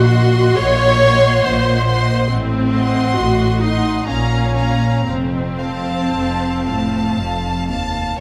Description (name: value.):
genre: classical, slow romantic movement for string orchestra.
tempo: 56-70 BPM.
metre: 3/4.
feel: rubato.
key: unclear.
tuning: A4 = 441 Hz.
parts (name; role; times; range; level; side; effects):
rich chamber violin section; melody; 0.0-8.2 s; A5 to C6; -27 LUFS; equal; none.
clear chamber violin section; second line; 0.0-8.2 s; Eb5 to Gb5; -29 LUFS; equal; none.
rich studio viola section; accompaniment; 0.0-7.7 s; C4 to Db5; -20 LUFS; equal; none.
rich studio cello section; bass; 0.0-8.2 s; Eb2 to Bb2; -23 LUFS; equal; none.
rich studio double bass section; bass; 0.0-8.1 s; F1 to Bb1; -22 LUFS; equal; none.
room: moderate concert hall reverb, RT60 2.2 s.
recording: none.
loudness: -16 LUFS.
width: mono.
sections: 0.0-8.2 A section.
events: none.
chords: 0.0 Cm7b5/Bb; 2.3 Adim7; 4.1 Bbm; 5.1 F.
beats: 0.57 1.45 | 2.31 3.17 4.08 | 5.08 6.14 7.19 | 8.20.